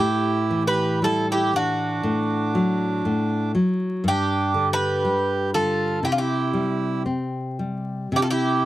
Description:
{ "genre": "fado-style ballad", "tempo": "59 BPM", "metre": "2/4", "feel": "uneven beats, rubato", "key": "C major", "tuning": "A4 = 438 Hz", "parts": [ { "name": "Greek bouzouki", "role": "melody", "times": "0.0-8.7 s", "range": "F4 to B4", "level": "-24 LUFS", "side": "right 1 dB", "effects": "none" }, { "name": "accordion", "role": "second line", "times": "0.0-8.7 s", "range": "D4 to G4", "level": "-26 LUFS", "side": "right 4 dB", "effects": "none" }, { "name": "nylon-string guitar", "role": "accompaniment", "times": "0.0-8.7 s", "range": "G2 to C4", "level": "-24 LUFS", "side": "left 1 dB", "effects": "none" } ], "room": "light reverb", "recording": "vinyl crackle", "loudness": "-20 LUFS", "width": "side -14 dB against mid", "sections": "0.0-8.1 A section", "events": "none", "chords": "0.0 A5; 2.0 D/A; 4.0 G; 6.0 C5" }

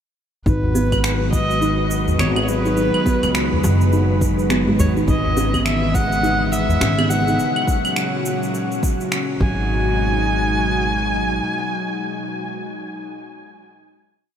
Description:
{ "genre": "organic downtempo", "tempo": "104 BPM", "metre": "4/4", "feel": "swing 60% on 16ths", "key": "G# minor", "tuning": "A4 = 441 Hz", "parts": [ { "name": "clear kamancheh", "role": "melody", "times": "0.5-12.5 s", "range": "B4 to G#5", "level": "-24 LUFS", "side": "equal", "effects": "vintage 12-bit sampler grit, ping-pong delay" }, { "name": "airy breathy pad", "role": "sustained chords", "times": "0.5-12.5 s", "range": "A#2 to F#4", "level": "-24 LUFS", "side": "equal", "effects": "chorus, sidechain pumping" }, { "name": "kalimba", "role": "arpeggios", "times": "0.5-9.9 s", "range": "F#3 to D#4", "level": "-24 LUFS", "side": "right 1 dB", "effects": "vintage 12-bit sampler grit, ping-pong delay" }, { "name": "upright bass", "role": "bass", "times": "0.5-11.4 s", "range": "F#1 to C#2", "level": "-21 LUFS", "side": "equal", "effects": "tube saturation" }, { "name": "electronic cabasa, claves and finger snaps", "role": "drums", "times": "0.5-9.3 s", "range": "none", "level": "-27 LUFS", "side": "right 1 dB", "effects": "overdrive" }, { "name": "electronic kick drum", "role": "drums", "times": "0.5-9.5 s", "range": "none", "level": "-21 LUFS", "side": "equal", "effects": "overdrive" }, { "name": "wind-like tuned noise texture", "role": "texture", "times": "1.6-7.4 s", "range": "B4", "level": "-33 LUFS", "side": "right 2 dB", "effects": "built-in reverb, ensemble chorus" }, { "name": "udu", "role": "percussion", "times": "0.6-6.8 s", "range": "none", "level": "-22 LUFS", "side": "left 1 dB", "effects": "none" } ], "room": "moderate huge ambient reverb, RT60 9.4 s", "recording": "dreamy mix soaked in reverb", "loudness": "-16 LUFS", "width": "side -8 dB against mid", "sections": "0.5-9.7 groove; 9.7-12.0 final hit", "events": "none", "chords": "0.5 G#m7; 5.1 C#m9/G#; 7.4 F#; 9.4 G#m7" }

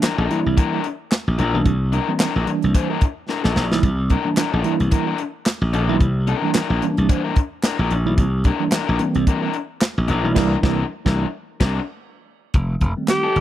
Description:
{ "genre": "funk", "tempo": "110 BPM", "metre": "4/4", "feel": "swing 56% on 16ths", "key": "C mixolydian", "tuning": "A4 = 436 Hz", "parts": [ { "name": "raw garage guitar", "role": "accompaniment", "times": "0.0-13.4 s", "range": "D4 to C5", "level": "-25 LUFS", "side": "left 7 dB", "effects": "overdrive" }, { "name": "mellow tine electric piano", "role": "stabs", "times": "0.0-13.3 s", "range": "Eb3 to E4", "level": "-22 LUFS", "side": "right 3 dB", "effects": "medium stereo tremolo" }, { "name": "tight funk drum kit", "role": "drums", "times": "0.0-13.4 s", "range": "crash cymbal, handclaps, hi-hat, kick drum, snare drum", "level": "-19 LUFS", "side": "equal", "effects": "none" }, { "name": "slap bass", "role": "bass", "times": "0.2-13.4 s", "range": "F1 to C2", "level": "-20 LUFS", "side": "equal", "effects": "none" }, { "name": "growling alto saxophone", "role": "melody", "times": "13.1-13.4 s", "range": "G4", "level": "-17 LUFS", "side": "equal", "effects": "none" } ], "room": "little or no reverb", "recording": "dry, close 1970s-style studio recording", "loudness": "-17 LUFS", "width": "side -12 dB against mid", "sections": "0.0-12.5 A section", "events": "drum fill 3.3-3.8; band accent 10.4-12.5; break 12.0-12.5", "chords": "0.0 C9; 12.5 F9" }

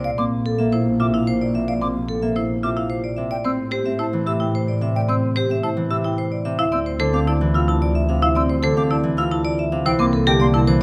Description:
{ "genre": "classical, minimalist pattern music", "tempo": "110 BPM", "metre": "3/4", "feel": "straight", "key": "D minor", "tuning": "A4 = 440 Hz", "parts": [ { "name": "vibraphone with hard mallets", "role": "melody", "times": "0.0-10.8 s", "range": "G4 to A5", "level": "-28 LUFS", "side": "equal", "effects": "none" }, { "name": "Celtic harp", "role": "accompaniment", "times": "0.0-10.8 s", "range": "C3 to C4", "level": "-26 LUFS", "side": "equal", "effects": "none" }, { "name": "hollow concert flute", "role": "arpeggios", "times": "0.0-10.6 s", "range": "F5 to E6", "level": "-31 LUFS", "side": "equal", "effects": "none" }, { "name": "rich chamber double bass section", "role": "bass", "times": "0.0-10.8 s", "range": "Bb1 to A2", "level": "-26 LUFS", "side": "equal", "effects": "none" }, { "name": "marimba with hard mallets", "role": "arpeggios", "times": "0.2-10.7 s", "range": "C4 to C5", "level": "-28 LUFS", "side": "equal", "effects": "none" } ], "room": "moderate recital hall reverb, RT60 1.8 s", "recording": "close, detailed microphones", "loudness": "-20 LUFS", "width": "mono", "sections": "0.0-10.8 A section", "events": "none", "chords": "0.0 Bbadd9; 3.3 Am7; 6.6 Dm7; 9.9 C9" }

